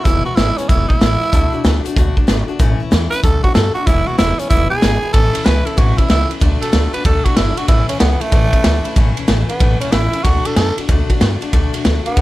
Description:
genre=rockabilly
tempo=188 BPM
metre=4/4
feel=swing 65% on 8ths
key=A major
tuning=A4 = 441 Hz
part: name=growling tenor saxophone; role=melody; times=0.0-12.2 s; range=A3 to B4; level=-19 LUFS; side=right 2 dB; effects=none
part: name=picked steel-string acoustic guitar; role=accompaniment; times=0.0-12.2 s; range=E2 to F#4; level=-24 LUFS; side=left 5 dB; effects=none
part: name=upright bass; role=bass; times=0.1-12.2 s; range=E1 to G2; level=-17 LUFS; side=equal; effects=none
part: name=raw garage drum kit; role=drums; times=0.1-12.2 s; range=hi-hat, kick drum, ride cymbal, snare drum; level=-15 LUFS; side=equal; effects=none
room=light reverb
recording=none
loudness=-12 LUFS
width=side -17 dB against mid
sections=0.0-5.1 A section; 5.1-12.2 B section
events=tenor saxophone solo 0.0-5.1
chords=0.1 E; 1.3 D; 2.6 A; 3.2 D; 3.9 E; 5.1 A; 6.4 D; 7.7 A; 10.2 D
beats=| 0.06 0.37 0.69 1.01 | 1.33 1.65 1.97 2.28 | 2.60 2.92 3.24 3.55 | 3.87 4.19 4.51 4.82 | 5.14 5.46 5.78 6.09 | 6.41 6.73 7.05 7.37 | 7.69 8.01 8.33 8.64 | 8.96 9.28 9.60 9.92 | 10.24 10.56 10.89 11.21 | 11.53 11.85 12.17

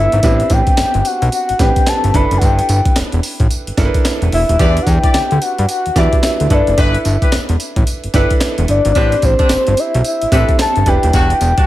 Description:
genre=R&B, new jack swing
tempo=110 BPM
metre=4/4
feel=swing 61% on 16ths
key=unclear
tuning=A4 = 439 Hz
part: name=soft octave-layered synth lead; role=melody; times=0.0-11.7 s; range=C5 to B5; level=-16 LUFS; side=left 2 dB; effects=chorus, tremolo
part: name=warm concert grand piano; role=accompaniment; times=0.0-11.7 s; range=B3 to C5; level=-21 LUFS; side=right 4 dB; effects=none
part: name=fat analog bass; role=bass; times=0.0-11.5 s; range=D#1 to G2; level=-15 LUFS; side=equal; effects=none
part: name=breakbeat sampler-style drum kit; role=drums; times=0.1-11.7 s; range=handclaps, hi-hat, kick drum, snare drum, tambourine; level=-16 LUFS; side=equal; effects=none
part: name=warm horn section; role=stabs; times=4.6-11.7 s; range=G3 to D5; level=-24 LUFS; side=left 2 dB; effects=none
room=little or no reverb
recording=none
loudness=-11 LUFS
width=side -15 dB against mid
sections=0.0-11.7 A section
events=none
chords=0.2 Am11; 2.1 G6; 4.6 Em7; 6.5 G6; 9.0 Am11; 10.9 Em9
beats=| 0.23 0.78 1.32 1.87 | 2.41 2.96 3.50 4.05 | 4.59 5.14 5.68 6.23 | 6.78 7.32 7.87 8.41 | 8.96 9.50 10.05 10.59 | 11.14

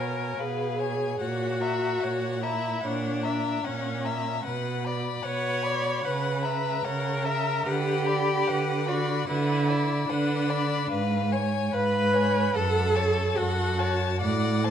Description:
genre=classical, slow romantic movement for string quartet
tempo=74 BPM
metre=4/4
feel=rubato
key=unclear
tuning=A4 = 438 Hz
part: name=warm violin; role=melody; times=0.0-14.7 s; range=E#5 to B5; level=-33 LUFS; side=left 10 dB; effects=none
part: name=rich violin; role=second line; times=0.0-14.7 s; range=A4 to E5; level=-33 LUFS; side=left 4 dB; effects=none
part: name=bright viola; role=accompaniment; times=0.0-14.2 s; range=C#4 to C#5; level=-28 LUFS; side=right 1 dB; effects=none
part: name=rich cello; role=bass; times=0.0-14.7 s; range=F#2 to D3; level=-29 LUFS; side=right 3 dB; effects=none
room=wet recital hall reverb, RT60 1.5 s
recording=none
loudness=-24 LUFS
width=side -9 dB against mid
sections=0.0-14.7 A section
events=none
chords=0.0 C#7/B; 1.2 F#7/A#; 4.5 Bm; 6.1 F#7/C#; 7.7 Bm/D; 10.9 C#7/G#; 12.6 F#m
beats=0.39 | 1.22 2.03 2.85 3.66 | 4.46 5.26 6.06 6.86 | 7.67 8.47 9.28 10.10 | 10.91 11.73 12.55 13.38 | 14.22

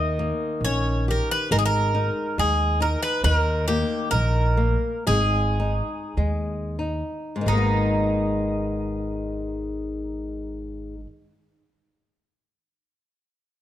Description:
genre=fado-style ballad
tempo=43-70 BPM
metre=2/4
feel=rubato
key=G# harmonic minor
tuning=A4 = 439 Hz
part: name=Greek bouzouki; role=melody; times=0.0-11.1 s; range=D#4 to D#5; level=-26 LUFS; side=right 1 dB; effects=none
part: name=flamenco guitar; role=accompaniment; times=0.0-11.2 s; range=G#2 to G4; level=-27 LUFS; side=left 2 dB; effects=none
part: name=upright bass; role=bass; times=0.0-11.0 s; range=G#1 to D#2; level=-25 LUFS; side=equal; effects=none
room=light reverb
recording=close, detailed microphones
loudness=-21 LUFS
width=side -12 dB against mid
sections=0.0-7.5 A section; 7.5-12.9 B section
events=slowing down 3.2-7.5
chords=0.0 D#7; 1.5 G#sus2; 3.2 D#5; 5.1 G#5; 7.5 G#madd9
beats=0.62 | 1.51 2.38 | 3.24 4.13 | 5.08 6.18 | 7.46 8.84 | 10.20

